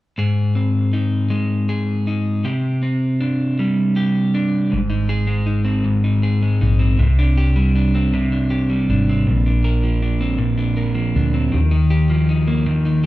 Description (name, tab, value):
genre	pop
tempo	53 BPM (dotted quarters)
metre	6/8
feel	straight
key	unclear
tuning	A4 = 440 Hz
part	electric guitar at the edge of break-up	accompaniment	0.2-13.1 s	Ab2 to Bb4	-17 LUFS	equal	none
part	hollow-body short-scale fingered electric bass	bass	4.7-13.1 s	Ab1 to Eb2	-19 LUFS	equal	none
room	wet large studio reverb, RT60 0.9 s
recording	band playing live in one room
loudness	-16 LUFS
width	side -16 dB against mid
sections	0.2-4.7 A section; 4.7-13.1 B section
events	none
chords	0.2 Ab; 2.5 Csus2; 4.7 Ab; 7.0 Csus2; 9.3 Bbadd9; 11.5 Ebadd9